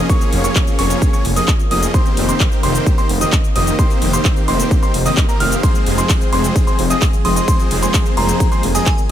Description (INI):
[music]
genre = EDM, festival progressive house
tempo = 130 BPM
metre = 4/4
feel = straight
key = F minor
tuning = A4 = 440 Hz
[part]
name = lush unison pad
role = sustained chords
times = 0.0-9.1 s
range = F3 to Ab4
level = -25 LUFS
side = equal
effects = chorus, sidechain pumping
[part]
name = clear grand piano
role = arpeggios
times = 0.0-8.9 s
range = Bb5 to F6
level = -23 LUFS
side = right 1 dB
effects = sidechain pumping, ping-pong delay
[part]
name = supersaw chords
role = riff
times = 0.0-8.9 s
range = Eb3 to F5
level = -20 LUFS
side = equal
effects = sidechain pumping, ping-pong delay
[part]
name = big-room dance drum kit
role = drums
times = 0.1-9.1 s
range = handclaps, hi-hat, ride cymbal, shaker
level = -22 LUFS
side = left 1 dB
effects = none
[part]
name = electronic kick drum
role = drums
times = 0.1-9.0 s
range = none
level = -15 LUFS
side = equal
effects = none
[part]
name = wide detuned saw bass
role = bass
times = 0.3-8.8 s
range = F1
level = -19 LUFS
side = equal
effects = chorus, sidechain pumping
[part]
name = glassy synth bell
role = melody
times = 7.2-8.9 s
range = Ab5 to C6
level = -23 LUFS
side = equal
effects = chorus, ping-pong delay
[sound]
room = little or no reverb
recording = none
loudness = -13 LUFS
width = side -11 dB against mid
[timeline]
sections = 0.0-9.1 A section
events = none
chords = 0.0 Db6/F; 1.9 Cm7/F; 5.6 Fm